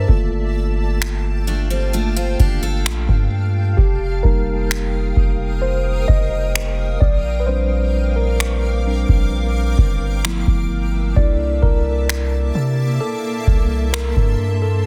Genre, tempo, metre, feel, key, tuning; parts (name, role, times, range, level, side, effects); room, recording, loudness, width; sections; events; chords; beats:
contemporary R&B; 65 BPM; 4/4; straight; A4 = 440 Hz
mellow tine electric piano; accompaniment; 0.0-14.9 s; F3 to E5; -26 LUFS; equal
granular cloud pad; sustained chords; 0.0-14.8 s; Bb3 to Eb6; -32 LUFS; equal; built-in reverb
long sustained 808-style bass; bass; 0.0-14.8 s; F1 to C3; -22 LUFS; equal
booming analog drum machine; drums; 0.1-14.4 s; finger snaps, kick drum; -19 LUFS; equal; soft clipping on snare
picked steel-string acoustic guitar; arpeggios; 1.5-4.0 s; G3 to A4; -29 LUFS; equal; tape echo
digital ambience; dense, heavily limited modern master; -18 LUFS; mono
0.0-14.9 A section
tine electric piano solo 0.0-14.9
0.1 Gm9; 3.8 F9sus4; 7.0 Bb6; 10.2 G13; 11.2 C13
| 0.09 1.01 1.94 2.86 | 3.78 4.70 5.63 6.55 | 7.47 8.40 9.32 10.24 | 11.17 12.09 13.01 13.94 | 14.86